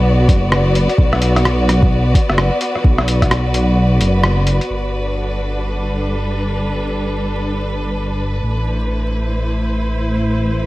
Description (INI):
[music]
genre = future garage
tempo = 129 BPM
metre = 4/4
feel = swing 61% on 16ths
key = unclear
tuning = A4 = 441 Hz
[part]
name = clear studio string section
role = sustained chords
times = 0.0-10.7 s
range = G3 to D5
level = -20 LUFS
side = equal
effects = sidechain pumping
[part]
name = dark detuned saw bass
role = bass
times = 0.0-10.7 s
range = F#1 to B1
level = -17 LUFS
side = equal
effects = sidechain pumping
[part]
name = electronic kick drum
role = drums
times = 0.3-3.3 s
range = none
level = -13 LUFS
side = equal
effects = overdrive
[part]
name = lo-fi sampler-style drum kit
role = drums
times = 0.3-4.7 s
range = hi-hat, rim click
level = -20 LUFS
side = equal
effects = low-pass filter on snare, low-pass filter on hats
[sound]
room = light reverb, digital ambience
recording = vinyl crackle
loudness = -14 LUFS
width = side -18 dB against mid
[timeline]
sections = 0.0-4.7 A section; 4.7-10.7 B section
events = kick drops out 3.8-4.7; band accent 4.2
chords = 0.0 Bm; 4.7 Gmaj9; 8.4 Amadd9